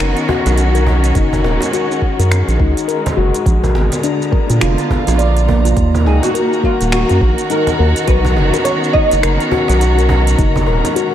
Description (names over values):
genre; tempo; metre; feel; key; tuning
organic downtempo; 104 BPM; 4/4; swing 60% on 16ths; Eb minor; A4 = 440 Hz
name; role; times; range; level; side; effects
rich chamber string section; sustained chords; 0.0-11.1 s; D3 to Bb5; -19 LUFS; right 1 dB; sidechain pumping
handpan; arpeggios; 0.0-11.1 s; Bb3 to D5; -18 LUFS; left 4 dB; low-pass filter, tape echo
round analog bass; bass; 0.0-10.8 s; Eb1 to Bb2; -14 LUFS; equal; none
organic electronic drum kit; drums; 0.0-11.1 s; finger snaps, hi-hat, shaker; -24 LUFS; right 2 dB; overdrive
cajon; percussion; 0.3-10.9 s; none; -23 LUFS; right 2 dB; none
electronic kick drum; drums; 1.2-10.5 s; none; -16 LUFS; equal; overdrive
oud; melody; 6.1-9.8 s; F4 to D#5; -18 LUFS; right 1 dB; tape echo
room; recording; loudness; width
light reverb, small room ambience; none; -12 LUFS; side -10 dB against mid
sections
0.0-11.1 A section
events
none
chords
0.0 Bmaj9; 1.2 Gb69; 3.5 Bb7b9; 5.8 Ebm7; 8.1 Bmaj9; 10.4 Gb69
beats
0.00 0.58 | 1.15 1.73 2.31 2.88 | 3.46 4.04 4.62 5.19 | 5.77 6.35 6.92 7.50 | 8.08 8.65 9.23 9.81 | 10.38 10.96